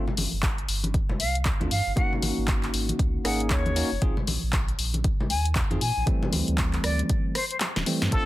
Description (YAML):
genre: deep house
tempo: 117 BPM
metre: 4/4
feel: swing 60% on 16ths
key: unclear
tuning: A4 = 440 Hz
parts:
  - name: bell-like tine electric piano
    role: stabs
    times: 0.0-8.3 s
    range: E3 to Ab4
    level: -30 LUFS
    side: equal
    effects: sidechain pumping, tape echo
  - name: congas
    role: percussion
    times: 0.1-7.8 s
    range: none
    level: -34 LUFS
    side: left 2 dB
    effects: none
  - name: warm sub bass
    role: bass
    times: 0.2-8.2 s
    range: D1 to Bb2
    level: -29 LUFS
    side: equal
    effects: none
  - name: punchy analog drum machine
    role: drums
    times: 0.2-8.2 s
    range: handclaps, hi-hat, rim click, snare drum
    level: -29 LUFS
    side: left 1 dB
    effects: none
  - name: electronic kick drum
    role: drums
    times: 0.4-8.2 s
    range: none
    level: -26 LUFS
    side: equal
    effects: none
  - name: reedy silver concert flute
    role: melody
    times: 1.2-7.6 s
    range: C5 to Ab5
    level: -31 LUFS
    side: left 1 dB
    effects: tape echo
  - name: trumpet with plunger mute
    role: melody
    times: 8.1-8.3 s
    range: A4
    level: -26 LUFS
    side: equal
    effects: none
room: little or no reverb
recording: dense, heavily limited modern master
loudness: -23 LUFS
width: side -16 dB against mid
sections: 0.0-8.3 A section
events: kick drops out 7.6-8.1; drum fill 7.6-8.1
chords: 0.0 G7sus4; 2.0 Ab9sus4; 4.0 Bb7sus4; 6.1 D9sus4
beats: 0.43 0.94 1.46 | 1.97 2.48 2.99 3.51 | 4.02 4.53 5.04 5.56 | 6.07 6.58 7.10 7.61 | 8.12